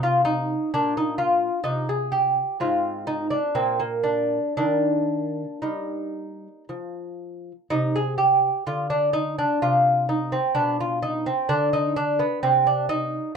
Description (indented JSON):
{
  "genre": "classical, baroque-style dance for lute",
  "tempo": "56-66 BPM",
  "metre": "3/4",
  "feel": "rubato",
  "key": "Eb major, C minor from 7.7 s",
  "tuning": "A4 = 440 Hz",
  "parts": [
    { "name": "lute", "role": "solo", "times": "0.0-13.3 s", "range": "Ab2 to Ab4", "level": "-21 LUFS", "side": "equal", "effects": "none" }
  ],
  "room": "little or no reverb",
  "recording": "dry, close 1970s-style studio recording",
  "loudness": "-21 LUFS",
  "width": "side -6 dB against mid",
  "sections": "0.0-7.7 A section; 7.7-13.4 A section",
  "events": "none",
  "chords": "0.0 Ab (rootless); 0.7 N.C.; 2.6 Fm/Ab; 3.6 N.C.; 4.6 Eb; 7.7 Cmadd9; 10.6 Bm; 12.4 N.C."
}